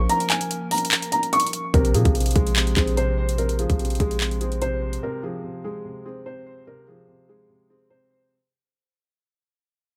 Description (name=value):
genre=hip hop, trap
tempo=146 BPM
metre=4/4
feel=half-time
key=unclear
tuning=A4 = 439 Hz
part: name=felt-muted upright piano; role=melody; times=0.0-8.3 s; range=Ab4 to Db6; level=-28 LUFS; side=equal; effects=none
part: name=warbly tape-like pad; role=sustained chords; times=0.0-1.7 s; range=F3 to Bb4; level=-35 LUFS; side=equal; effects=chorus, built-in reverb
part: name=long sustained 808-style bass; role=bass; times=0.0-5.0 s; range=Bb1 to Bb2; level=-26 LUFS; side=equal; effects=none
part: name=trap drum kit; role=drums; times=0.1-5.0 s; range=handclaps, hi-hat, kick drum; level=-25 LUFS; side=equal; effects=none
part: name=dark concert grand piano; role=accompaniment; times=1.7-8.3 s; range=C3 to C5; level=-32 LUFS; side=equal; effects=none
room=small room ambience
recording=none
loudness=-22 LUFS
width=mono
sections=0.0-1.7 A section; 1.7-8.3 B section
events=kick muted 0.1-1.7; fade-out 1.7-8.3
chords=0.0 Bbm; 1.7 Fm/Bb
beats=| 0.10 0.51 0.92 1.33 | 1.74 2.15 2.56 2.97 | 3.38 3.79 4.21 4.62 | 5.03 5.44 5.85 6.26 | 6.67 7.08 7.49 7.90